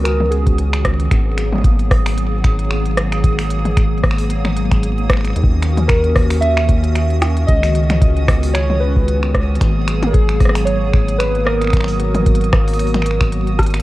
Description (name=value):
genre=IDM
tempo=113 BPM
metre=4/4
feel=swing 56% on 16ths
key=G# minor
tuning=A4 = 444 Hz
part: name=warbly lo-fi synth keys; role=melody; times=0.0-0.8, 5.9-13.3 s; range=G#4 to E5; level=-22 LUFS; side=right 1 dB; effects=chorus, digital delay
part: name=hollow soft pad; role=sustained chords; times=0.0-13.8 s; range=D#3 to G#4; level=-23 LUFS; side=equal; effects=ensemble chorus, vintage 12-bit sampler grit
part: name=rubbery square bass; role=bass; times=0.0-13.8 s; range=G#1 to D#2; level=-18 LUFS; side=equal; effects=none
part: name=bubbling stepped-filter texture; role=texture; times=0.0-13.8 s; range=D#6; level=-31 LUFS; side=right 7 dB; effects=chorus, built-in reverb
part: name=industrial drum kit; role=drums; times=0.1-13.8 s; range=finger snaps, hi-hat, rim click, toms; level=-22 LUFS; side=equal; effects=small room reverb
part: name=electronic kick drum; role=drums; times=0.5-13.7 s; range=none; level=-15 LUFS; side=equal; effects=small room reverb
room=digital ambience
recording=worn, warbling old tape, cassette tape, warbly pitch drift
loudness=-13 LUFS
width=side -17 dB against mid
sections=0.0-13.8 A section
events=drum fill 13.6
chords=0.0 C#9sus4; 1.1 G#m9; 5.4 D#m7; 7.5 C#9sus4; 9.6 G#m9